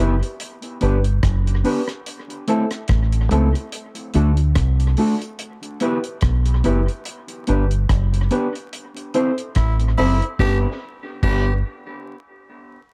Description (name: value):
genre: roots reggae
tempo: 72 BPM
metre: 4/4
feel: swing 56% on 16ths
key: G major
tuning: A4 = 436 Hz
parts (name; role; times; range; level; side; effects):
- mellow electric guitar; accompaniment; 0.0-11.5 s; A3 to C5; -27 LUFS; equal; dub echo
- dark upright piano; stabs; 0.0-11.6 s; A3 to C5; -28 LUFS; equal; none
- deep dub fingered electric bass; bass; 0.0-11.6 s; F#1 to D2; -20 LUFS; equal; none
- deep reggae drum kit; drums; 0.2-11.4 s; crash cymbal, hi-hat, kick drum, rim click, snare drum; -26 LUFS; equal; dub echo
- growling tenor saxophone; second line; 9.6-11.5 s; E4 to G4; -30 LUFS; equal; dub echo
room: little or no reverb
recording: echo-heavy mix, vinyl crackle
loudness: -20 LUFS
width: mono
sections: 0.0-10.4 A section; 10.4-12.9 B section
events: band accent 7.1-10.4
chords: 0.4 G; 2.1 Am; 3.7 D; 5.4 Em; 7.1 G; 8.7 Am; 10.4 G